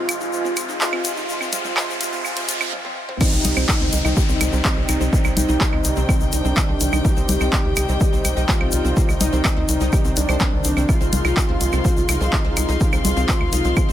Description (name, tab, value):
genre	melodic techno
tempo	125 BPM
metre	4/4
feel	straight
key	C minor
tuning	A4 = 440 Hz
part	wide unison lead	melody	0.0-13.9 s	C4 to G4	-26 LUFS	left 1 dB	sidechain pumping, digital delay
part	warm chamber string section	sustained chords	0.0-13.9 s	C2 to C6	-31 LUFS	left 3 dB	sidechain pumping
part	wide unison pluck	arpeggios	0.0-13.9 s	C4 to C6	-30 LUFS	right 1 dB	sidechain pumping, tape echo
part	analog synth brass	stabs	0.0-13.9 s	C3 to F4	-28 LUFS	right 2 dB	chorus, cassette tape, sidechain pumping, tape echo
part	riser and downlifter	sound effects	0.0-7.0 s	none	-28 LUFS	equal	none
part	punchy analog drum machine	drums	0.1-13.9 s	claves, congas, crash cymbal, handclaps, hi-hat, toms	-24 LUFS	equal	none
part	egg shaker	percussion	0.1-13.9 s	none	-30 LUFS	left 6 dB	none
part	electronic kick drum	drums	3.2-13.9 s	none	-20 LUFS	equal	none
part	tight sequencer bass	bass	3.3-13.9 s	C2 to D2	-22 LUFS	equal	sidechain pumping
room	digital ambience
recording	high-pass filter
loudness	-17 LUFS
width	side -12 dB against mid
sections	0.0-3.2 A section; 3.2-13.9 B section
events	build-up 0.0-3.2; riser 0.0-2.7; filter sweep on synth arpeggio sound 0.0-3.2; filter sweep on analog synth lead 0.0-3.2; filter sweep on analog polysynth 0.0-3.2; filter sweep 0.0-3.2; break 2.7-3.2; drum fill 2.7-3.2; drop 3.2-13.9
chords	0.0 Ab6/C; 3.2 Cm; 10.9 Ab6/C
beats	0.33 0.81 | 1.29 1.77 2.25 2.73 | 3.21 3.69 4.17 4.65 | 5.13 5.61 6.09 6.57 | 7.05 7.53 8.01 8.49 | 8.97 9.45 9.93 10.41 | 10.89 11.37 11.85 12.33 | 12.81 13.29 13.77